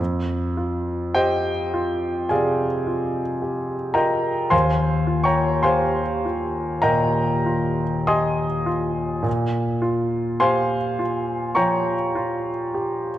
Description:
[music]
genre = classical, impressionist solo piano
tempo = 47-54 BPM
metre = 4/4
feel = rubato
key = F minor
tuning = A4 = 440 Hz
[part]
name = clear concert grand piano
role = solo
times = 0.0-13.2 s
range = Eb2 to Eb6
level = -20 LUFS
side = equal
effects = none
[sound]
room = moderate concert hall reverb, RT60 2.1 s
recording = dark, warm production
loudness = -20 LUFS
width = side -12 dB against mid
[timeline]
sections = 0.0-13.2 A section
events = none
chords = 0.0 Fm6; 4.5 Ebadd9; 9.3 Bbm6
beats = | 0.00 1.16 2.31 3.42 | 4.53 5.67 6.86 8.09 | 9.26 10.42 11.58 12.75

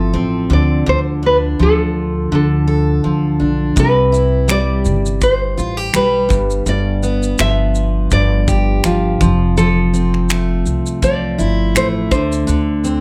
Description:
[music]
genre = acoustic pop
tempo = 83 BPM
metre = 4/4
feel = swing 55% on 16ths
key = C major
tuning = A4 = 440 Hz
[part]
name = nylon-string guitar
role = melody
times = 0.0-13.0 s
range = F4 to E5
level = -21 LUFS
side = equal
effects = slapback echo, plate reverb
[part]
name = picked steel-string acoustic guitar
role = accompaniment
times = 0.0-13.0 s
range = G2 to A4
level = -19 LUFS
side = equal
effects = none
[part]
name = upright bass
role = bass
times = 0.0-13.0 s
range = F1 to D2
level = -20 LUFS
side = equal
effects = none
[part]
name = modern studio drum kit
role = drums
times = 3.8-13.0 s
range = finger snaps, kick drum, shaker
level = -21 LUFS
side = equal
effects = none
[sound]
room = light reverb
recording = none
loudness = -15 LUFS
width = mono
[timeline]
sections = 0.0-13.0 A section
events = none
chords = 0.0 Fmaj7; 0.5 Dm; 3.8 Cmaj7; 6.3 G7; 9.2 Fmaj7; 12.1 D7(no3)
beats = 0.15 | 0.87 1.59 2.32 3.04 | 3.77 4.49 5.22 5.94 | 6.67 7.39 8.12 8.84 | 9.57 10.29 11.02 11.74 | 12.47

